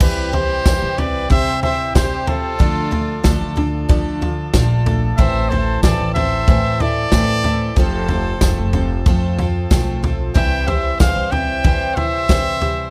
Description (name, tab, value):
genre	indie folk with a building arrangement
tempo	93 BPM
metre	4/4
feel	straight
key	C major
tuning	A4 = 445 Hz
part	warm trumpet	melody	0.0-12.9 s	A4 to G5	-24 LUFS	equal	none
part	warm fiddle	second line	0.0-12.9 s	F4 to E5	-31 LUFS	equal	none
part	picked twelve-string acoustic guitar	accompaniment	0.0-12.9 s	A2 to C5	-29 LUFS	equal	none
part	mellow brass ensemble	sustained chords	0.0-12.9 s	E3 to A5	-34 LUFS	equal	none
part	dark upright piano	arpeggios	0.0-12.9 s	C3 to E5	-29 LUFS	equal	none
part	upright bass	bass	0.0-12.8 s	F1 to D3	-24 LUFS	equal	none
part	natural country drum kit	drums	0.0-12.8 s	crash cymbal, kick drum, snare drum, toms	-20 LUFS	equal	none
part	tambourine	percussion	0.7-12.4 s	none	-35 LUFS	equal	none
room	small room ambience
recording	none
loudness	-17 LUFS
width	mono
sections	0.0-12.9 A section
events	none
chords	0.0 C; 2.6 Dm; 5.2 Am; 7.8 F; 10.4 C